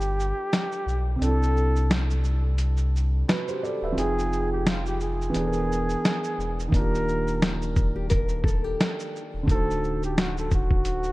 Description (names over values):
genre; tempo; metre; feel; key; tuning
lo-fi hip hop; 87 BPM; 4/4; swing 58% on 16ths; unclear; A4 = 440 Hz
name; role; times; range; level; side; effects
mellow flugelhorn; melody; 0.0-11.1 s; F4 to Bb4; -30 LUFS; equal; analog delay
felt-muted upright piano; accompaniment; 0.0-11.1 s; C3 to G5; -30 LUFS; right 2 dB; none
sub bass with octave; bass; 0.0-11.1 s; D1 to C2; -26 LUFS; equal; none
lo-fi sampler-style drum kit; drums; 0.0-11.1 s; hi-hat, kick drum, shaker, snare drum; -25 LUFS; equal; none
nylon-string guitar; second line; 8.0-9.4 s; G4 to Bb4; -32 LUFS; left 3 dB; analog delay
room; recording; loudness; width
light reverb, studio ambience; dark, warm production; -22 LUFS; side -19 dB against mid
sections
0.0-11.1 A section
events
break 0.0-6.7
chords
0.0 G7; 1.2 C69; 4.0 Fm7; 5.3 E7#11; 6.7 Ebmaj7; 9.5 D7b9